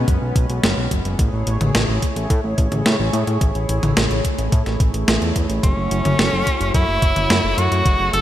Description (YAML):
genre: synthwave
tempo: 108 BPM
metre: 4/4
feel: straight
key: unclear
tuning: A4 = 440 Hz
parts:
  - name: chorused pulse-width pad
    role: sustained chords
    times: 0.0-8.2 s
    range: G#3 to C#5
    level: -25 LUFS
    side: equal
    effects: sidechain pumping
  - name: fat analog bass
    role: bass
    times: 0.0-8.2 s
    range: F#1 to A2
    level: -21 LUFS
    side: equal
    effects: tube saturation
  - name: clean 12-bit digital drum machine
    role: drums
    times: 0.1-8.2 s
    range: hi-hat, snare drum, toms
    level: -22 LUFS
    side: equal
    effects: overdrive, gated reverb
  - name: electronic kick drum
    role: drums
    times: 0.1-8.0 s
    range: none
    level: -18 LUFS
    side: equal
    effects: overdrive
  - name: edgy tenor saxophone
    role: melody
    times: 5.6-8.2 s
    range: C#4 to A4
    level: -19 LUFS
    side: equal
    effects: digital delay
room: moderate lush hall reverb, RT60 2.4 s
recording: bright 1980s-style digital production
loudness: -16 LUFS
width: side -12 dB against mid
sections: 0.0-8.2 A section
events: none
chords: 0.0 G#m; 1.2 Amaj7; 5.6 F#m7